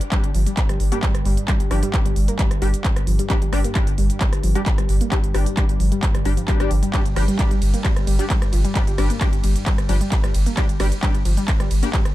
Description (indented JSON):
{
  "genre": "driving peak-time techno",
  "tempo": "132 BPM",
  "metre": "4/4",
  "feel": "straight",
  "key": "unclear",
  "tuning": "A4 = 439 Hz",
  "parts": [
    { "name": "analog drone", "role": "drone", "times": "0.4-12.1 s", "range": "G2 to G3", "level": "-30 LUFS", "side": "equal", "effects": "chorus, sidechain pumping" },
    { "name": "techno drum kit", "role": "drums", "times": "0.0-12.1 s", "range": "handclaps, hi-hat, ride cymbal, rim click", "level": "-28 LUFS", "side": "right 1 dB", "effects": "none" },
    { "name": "warbly dusty pluck", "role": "riff", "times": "0.1-12.0 s", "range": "F3 to Bb3", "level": "-29 LUFS", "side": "equal", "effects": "chorus, overdrive, sidechain pumping, tape echo" },
    { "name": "rave stab", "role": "stabs", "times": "0.1-11.9 s", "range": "G3 to G4", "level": "-30 LUFS", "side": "left 2 dB", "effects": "chorus, built-in reverb, sidechain pumping, tape echo" },
    { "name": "electronic kick drum", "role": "drums", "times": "0.1-12.0 s", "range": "none", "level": "-20 LUFS", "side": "equal", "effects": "none" },
    { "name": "saturated sub bass", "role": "bass", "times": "0.2-12.1 s", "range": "G1", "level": "-22 LUFS", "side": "equal", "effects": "tube saturation, sidechain pumping, low-pass filter" }
  ],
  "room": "digital ambience",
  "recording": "dark, warm production",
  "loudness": "-17 LUFS",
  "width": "side -15 dB against mid",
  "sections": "0.0-12.1 A section",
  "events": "none",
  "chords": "0.0 G5"
}